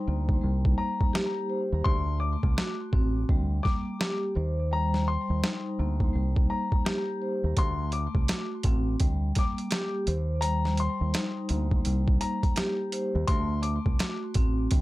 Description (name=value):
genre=hip hop, boom-bap hip-hop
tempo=84 BPM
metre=4/4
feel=swing 62% on 16ths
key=unclear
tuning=A4 = 440 Hz
part: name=vibraphone with soft mallets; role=accompaniment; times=0.0-14.8 s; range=G3 to C5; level=-31 LUFS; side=equal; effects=high-pass filter, low-pass filter
part: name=deep dub fingered electric bass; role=bass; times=0.1-14.8 s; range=A1 to Eb2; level=-28 LUFS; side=equal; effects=none
part: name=boom bap sampler-style drum kit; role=drums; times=0.3-14.8 s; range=hi-hat, kick drum, snare drum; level=-27 LUFS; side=equal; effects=none
part: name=warm upright piano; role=melody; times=0.8-14.2 s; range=Bb5 to D6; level=-34 LUFS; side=left 4 dB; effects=high-pass filter, low-pass filter, ping-pong delay
room=little or no reverb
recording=none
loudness=-25 LUFS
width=side -18 dB against mid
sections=0.0-14.8 A section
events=break 0.0-7.6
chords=0.0 Eb6; 1.9 D7; 3.3 Gm/D; 4.4 Eb6; 7.6 D7; 9.0 Gm/D; 10.1 Eb6; 13.3 D7